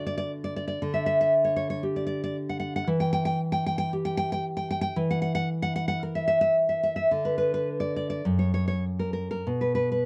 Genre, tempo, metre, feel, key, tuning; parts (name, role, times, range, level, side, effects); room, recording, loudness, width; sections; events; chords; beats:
romantic piece for solo classical guitar; 48-61 BPM; 2/4; rubato; A4 = 435 Hz
nylon-string guitar; solo; 0.0-10.1 s; F#2 to G5; -27 LUFS; equal
light reverb; dark, warm production; -27 LUFS; mono
0.0-10.1 A section
0.0 D; 0.8 Dadd11; 2.9 Em; 5.0 F#7/E; 7.1 N.C.
| 0.83 1.83 | 2.87 3.90 | 4.95 6.02 | 7.12 8.25 | 9.46